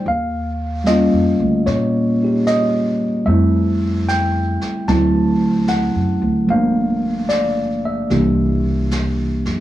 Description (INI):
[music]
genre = jazz ballad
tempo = 75 BPM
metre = 4/4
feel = swing 69% on 8ths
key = unclear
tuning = A4 = 440 Hz
[part]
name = tine electric piano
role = accompaniment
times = 0.0-9.6 s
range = E3 to A5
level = -17 LUFS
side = equal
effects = none
[part]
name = upright bass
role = bass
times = 0.1-9.6 s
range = G1 to Bb2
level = -20 LUFS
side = equal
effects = none
[part]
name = jazz brush drum kit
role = drums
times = 0.1-9.6 s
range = brushed snare drum, hi-hat, snare drum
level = -31 LUFS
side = right 2 dB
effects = none
[sound]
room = little or no reverb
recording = worn, warbling old tape, cassette tape, warbly pitch drift, small room ambience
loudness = -15 LUFS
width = side -13 dB against mid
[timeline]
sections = 0.0-9.6 A section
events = none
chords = 0.1 Eb9; 3.3 Fmaj7; 4.9 D7; 6.5 Gm7; 8.1 C7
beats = | 0.06 0.86 1.67 2.47 | 3.27 4.08 4.88 5.68 | 6.49 7.30 8.11 8.92